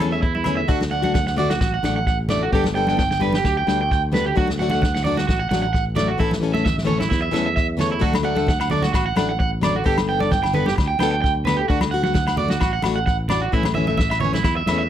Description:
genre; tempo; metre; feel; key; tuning
highlife guitar band; 131 BPM; 4/4; straight; D major; A4 = 439 Hz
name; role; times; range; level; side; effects
picked plugged-in steel-string acoustic guitar; accompaniment; 0.0-14.8 s; E3 to A4; -24 LUFS; left 6 dB; none
electric guitar at the edge of break-up; arpeggios; 0.0-14.9 s; E4 to G5; -23 LUFS; right 5 dB; slapback echo
sustaining fretless electric bass; bass; 0.0-14.9 s; G1 to E2; -25 LUFS; equal; none
vintage drum kit; drums; 0.0-14.8 s; hi-hat, kick drum, rim click, snare drum; -23 LUFS; equal; none
agogo bells; percussion; 0.0-0.6, 8.1-14.8 s; none; -30 LUFS; left 11 dB; none
congas; percussion; 0.3-14.8 s; none; -28 LUFS; right 2 dB; none
room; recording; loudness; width
studio reverb; dry, close 1970s-style studio recording; -18 LUFS; side -10 dB against mid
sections
0.7-14.9 A section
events
none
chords
0.0 A; 0.7 D; 2.5 Gadd9; 4.4 D; 6.2 A; 8.0 D; 9.9 Gadd9; 11.7 D; 13.5 A

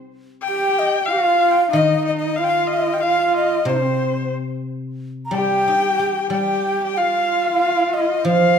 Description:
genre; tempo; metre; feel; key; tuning
chinese traditional, Chinese chamber ensemble; 92 BPM; 4/4; rubato; unclear; A4 = 440 Hz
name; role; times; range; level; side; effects
guzheng; accompaniment; 0.0-8.6 s; C3 to G4; -22 LUFS; equal; none
rich erhu; second line; 0.4-8.6 s; C5 to G5; -23 LUFS; left 7 dB; none
breathy xiao; melody; 0.5-8.6 s; C5 to Bb5; -20 LUFS; equal; none
warm horsehead fiddle; second line; 0.5-8.6 s; C4 to G4; -22 LUFS; right 4 dB; none
room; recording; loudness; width
moderate recital hall reverb, RT60 1.5 s; minimal, uncompressed stereo recording; -16 LUFS; side -7 dB against mid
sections
0.0-8.6 A section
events
none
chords
none

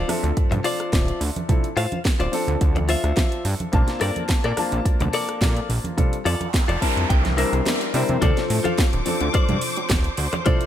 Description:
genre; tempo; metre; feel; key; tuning
nu-disco, nu disco; 107 BPM; 4/4; swing 53% on 16ths; D minor; A4 = 440 Hz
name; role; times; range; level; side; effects
clear baby grand piano; accompaniment; 0.0-10.6 s; F3 to A5; -27 LUFS; left 2 dB; sidechain pumping, tape echo
direct-recorded clean electric guitar; riff; 0.0-10.7 s; E4 to A5; -27 LUFS; left 4 dB; lush chorus, tape echo
fat analog bass; bass; 0.0-10.3 s; D1 to C3; -23 LUFS; equal; none
house drum kit; drums; 0.1-10.7 s; hi-hat, rim click, snare drum; -28 LUFS; right 1 dB; small room ambience
congas and bongos; percussion; 0.1-10.6 s; none; -30 LUFS; right 3 dB; none
electronic kick drum; drums; 0.4-10.6 s; none; -20 LUFS; equal; small room ambience
noise sweep; sound effects; 6.3-8.2 s; none; -31 LUFS; right 1 dB; none
clear studio string section; sustained chords; 8.2-10.7 s; C5 to D6; -29 LUFS; left 1 dB; vintage 12-bit sampler grit, sidechain pumping
room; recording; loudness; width
studio reverb; none; -19 LUFS; side -11 dB against mid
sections
0.0-8.2 A section; 8.2-10.7 B section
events
noise sweep 6.3-8.2; clean electric guitar fill 6.5-8.2; kick drops out 7.7-8.2; band accent 7.7; drop 8.2-10.7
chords
0.0 Dm7; 3.7 Bbmaj7; 6.0 F6; 7.1 C7; 8.2 Dm7

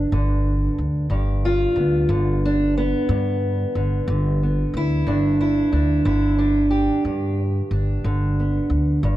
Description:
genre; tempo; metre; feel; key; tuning
acoustic country blues, solo or duo; 61 BPM (dotted quarters); 12/8; straight; G mixolydian; A4 = 439 Hz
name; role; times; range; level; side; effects
fingerpicked steel-string acoustic guitar; melody; 0.0-9.2 s; G2 to G4; -21 LUFS; right 1 dB; none
upright bass; bass; 0.0-9.2 s; G1 to G2; -21 LUFS; equal; none
room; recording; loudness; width
little or no reverb; dry, close 1970s-style studio recording; -18 LUFS; side -15 dB against mid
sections
0.0-9.2 A section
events
none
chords
0.0 G

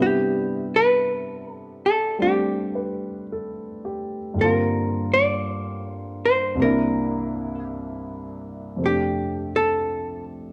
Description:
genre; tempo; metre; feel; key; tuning
jazz ballad; 54 BPM; 4/4; swing 67% on 8ths; C major; A4 = 440 Hz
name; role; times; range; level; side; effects
archtop guitar, miked and amplified; melody; 0.0-10.2 s; G4 to D5; -24 LUFS; equal; plate reverb
warm baby grand piano; accompaniment; 0.0-10.5 s; C2 to B4; -28 LUFS; equal; none
room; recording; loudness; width
moderate large studio reverb, RT60 0.8 s; dark, warm production; -23 LUFS; mono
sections
0.0-10.5 A section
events
none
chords
0.0 Cmaj9; 4.4 Gm7; 6.6 C9; 8.8 F69

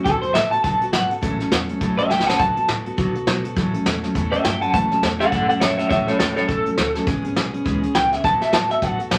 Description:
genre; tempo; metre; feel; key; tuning
rockabilly; 205 BPM; 4/4; swing 60% on 8ths; A major; A4 = 441 Hz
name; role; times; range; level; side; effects
electric guitar through a small old amp; melody; 0.0-9.0 s; A4 to A5; -22 LUFS; equal; tremolo
picked steel-string acoustic guitar; accompaniment; 0.0-9.2 s; A2 to A4; -26 LUFS; equal; none
upright bass; bass; 0.1-9.2 s; E1 to B2; -35 LUFS; equal; none
soft brush drum kit; drums; 0.1-9.2 s; hi-hat, kick drum, snare drum; -25 LUFS; equal; none
room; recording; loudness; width
moderate club reverb, RT60 0.6 s; vinyl crackle; -20 LUFS; mono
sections
0.0-9.2 A section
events
drum fill 2.1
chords
0.1 D6; 1.2 A6; 2.4 D6; 3.6 A6; 7.1 E6; 8.2 D6

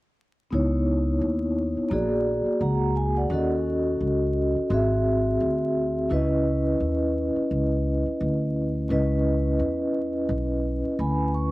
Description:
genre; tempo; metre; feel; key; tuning
hip hop; 86 BPM; 4/4; swing 57% on 16ths; C# dorian; A4 = 439 Hz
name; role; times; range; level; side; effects
vibraphone with medium mallets; accompaniment; 0.5-11.5 s; A#3 to C#6; -24 LUFS; equal; none
upright bass; bass; 0.5-11.5 s; G#1 to E2; -26 LUFS; equal; none
room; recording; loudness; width
light reverb, small room ambience; home recording on cassette, vinyl crackle; -22 LUFS; side -19 dB against mid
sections
0.5-11.5 A section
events
none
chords
0.5 C#m9; 1.9 A#7alt; 3.3 D#m7b5; 4.7 G#aug7; 6.1 C#m9

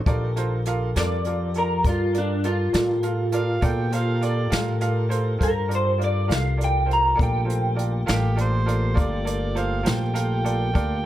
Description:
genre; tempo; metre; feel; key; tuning
slow blues; 67 BPM (dotted quarters); 12/8; straight; G minor; A4 = 442 Hz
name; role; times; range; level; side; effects
bright upright piano; accompaniment; 0.0-11.1 s; F4 to F5; -30 LUFS; right 4 dB; analog delay
mellow tonewheel organ; sustained chords; 0.0-11.1 s; A3 to Bb4; -32 LUFS; left 1 dB; slow rotary speaker
upright bass; bass; 0.0-11.1 s; G1 to Bb2; -24 LUFS; left 1 dB; none
jazz brush drum kit; drums; 0.1-10.9 s; hi-hat, kick drum, snare drum; -26 LUFS; equal; none
electric guitar through a small old amp; melody; 1.0-8.4 s; D4 to Bb5; -24 LUFS; equal; ensemble chorus
overdriven harmonica; second line; 3.3-11.1 s; Bb3 to G5; -30 LUFS; right 4 dB; none
room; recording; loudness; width
light reverb, studio ambience; echo-heavy mix; -20 LUFS; side -13 dB against mid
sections
0.1-11.1 A section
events
none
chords
0.1 Gm9

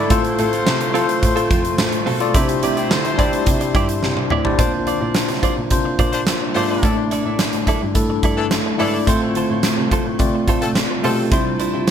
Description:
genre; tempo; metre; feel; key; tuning
1980s-style pop; 107 BPM; 4/4; straight; unclear; A4 = 438 Hz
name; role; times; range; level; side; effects
tine electric piano; accompaniment; 0.0-11.9 s; G3 to E5; -21 LUFS; left 3 dB; medium stereo tremolo
granular cloud pad; sustained chords; 0.0-11.9 s; C3 to F4; -27 LUFS; right 2 dB; built-in reverb
direct-recorded clean electric guitar; riff; 0.0-11.9 s; C4 to D5; -25 LUFS; right 5 dB; wide subtle chorus
dark cello; bass; 0.0-11.8 s; F2 to D3; -26 LUFS; equal; none
clear horn section; stabs; 0.1-11.2 s; E3 to C5; -27 LUFS; left 5 dB; tape echo
huge arena drum kit; drums; 0.1-11.9 s; hi-hat, kick drum, snare drum, tambourine, toms; -20 LUFS; right 1 dB; none
room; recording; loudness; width
light reverb; none; -16 LUFS; side -8 dB against mid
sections
0.0-4.6 A section; 4.6-11.9 B section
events
drum fill 4.0-4.6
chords
0.1 F/A; 2.3 Cadd9; 4.6 Bbadd9; 6.8 Asus4; 9.1 F/A; 11.3 Cadd9

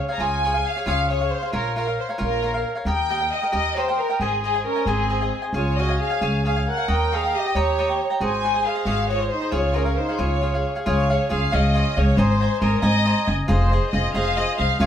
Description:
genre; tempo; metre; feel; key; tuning
mexican folk, mariachi; 90 BPM (dotted quarters); 6/8; straight; Db major; A4 = 440 Hz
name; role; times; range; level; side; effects
rich studio violin section; melody; 0.0-14.9 s; Ab4 to Bb5; -24 LUFS; left 1 dB; none
cavaquinho; accompaniment; 0.0-14.9 s; F4 to Bb5; -26 LUFS; equal; none
upright bass; bass; 0.2-14.9 s; F1 to Eb2; -23 LUFS; equal; none
mellow trumpet; second line; 4.7-10.7 s; C4 to C5; -28 LUFS; right 5 dB; none
room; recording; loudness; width
wet studio reverb, RT60 0.8 s; band playing live in one room; -19 LUFS; side -9 dB against mid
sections
0.2-10.9 A section; 10.9-14.9 B section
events
none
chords
0.2 Db; 1.5 Bbm; 2.8 Eb; 4.2 Ab; 5.5 Db; 6.9 Eb7; 8.2 Ab7; 9.5 Db; 12.2 Abadd9; 13.5 Fm7

